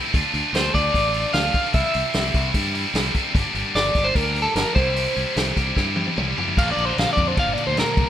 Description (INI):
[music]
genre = indie rock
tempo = 149 BPM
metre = 4/4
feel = straight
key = unclear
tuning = A4 = 441 Hz
[part]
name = scooped high-gain guitar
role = riff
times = 0.0-8.1 s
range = G2 to Bb4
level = -23 LUFS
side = equal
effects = distortion
[part]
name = growling fingered electric bass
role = bass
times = 0.1-8.0 s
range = G1 to G2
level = -27 LUFS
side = equal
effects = overdrive
[part]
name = vintage drum kit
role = drums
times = 0.1-8.1 s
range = crash cymbal, hi-hat, kick drum, ride cymbal, snare drum, toms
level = -24 LUFS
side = equal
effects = none
[part]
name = electric guitar at the edge of break-up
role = melody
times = 0.6-8.1 s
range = A4 to F5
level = -23 LUFS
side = equal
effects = harmonic tremolo, slapback echo
[sound]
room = light reverb, small room ambience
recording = rough home demo mix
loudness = -18 LUFS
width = side -10 dB against mid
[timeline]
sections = 0.0-6.6 A section; 6.6-8.1 B section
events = drum fill 5.8-6.6; clean electric guitar solo 6.6-8.1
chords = 0.1 Dm; 1.7 C; 3.3 Gm; 4.8 C; 6.6 Bb